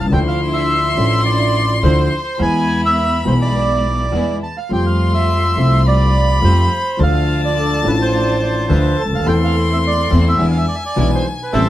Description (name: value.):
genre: tango.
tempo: 105 BPM.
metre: 4/4.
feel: rubato.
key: unclear.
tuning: A4 = 441 Hz.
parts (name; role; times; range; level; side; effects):
bandoneon; melody; 0.0-11.7 s; A4 to A5; -20 LUFS; right 3 dB; none.
warm violin; second line; 0.0-11.7 s; G#5 to C6; -22 LUFS; left 2 dB; none.
warm concert grand piano; accompaniment; 0.0-11.7 s; A1 to A4; -18 LUFS; left 1 dB; none.
upright bass; bass; 0.0-11.7 s; A1 to F2; -18 LUFS; equal; none.
warm studio string section; stabs; 0.1-11.7 s; F3 to F4; -24 LUFS; equal; none.
reedy concert flute; second line; 7.6-10.1 s; A4 to D5; -25 LUFS; right 2 dB; none.
room: moderate studio reverb, RT60 0.8 s.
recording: band playing live in one room, vinyl crackle.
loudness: -13 LUFS.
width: side -14 dB against mid.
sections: 0.0-11.7 A section.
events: band accent 11.5.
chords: 0.1 Dmadd9; 2.4 E; 4.7 Fadd9; 7.0 Dm; 9.3 Am/E; 10.4 E7.